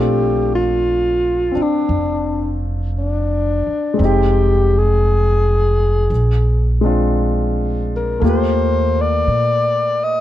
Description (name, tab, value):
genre	jazz ballad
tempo	57 BPM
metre	4/4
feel	swing 69% on 8ths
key	Bb major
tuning	A4 = 445 Hz
part	breathy alto saxophone	melody	0.0-10.2 s	D4 to Eb5	-18 LUFS	left 2 dB	none
part	clear grand piano	accompaniment	0.0-10.2 s	Ab3 to G5	-21 LUFS	left 1 dB	none
part	upright bass	bass	0.0-10.2 s	F1 to Bb2	-18 LUFS	right 1 dB	none
room	little or no reverb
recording	close, detailed microphones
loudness	-14 LUFS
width	side -13 dB against mid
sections	0.0-10.2 A section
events	none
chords	0.0 Bbmaj9; 4.0 Fm9; 6.1 Bb9; 8.2 Ebmaj9#11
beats	0.82 1.88 2.94 | 3.99 5.05 6.11 7.16 | 8.22 9.27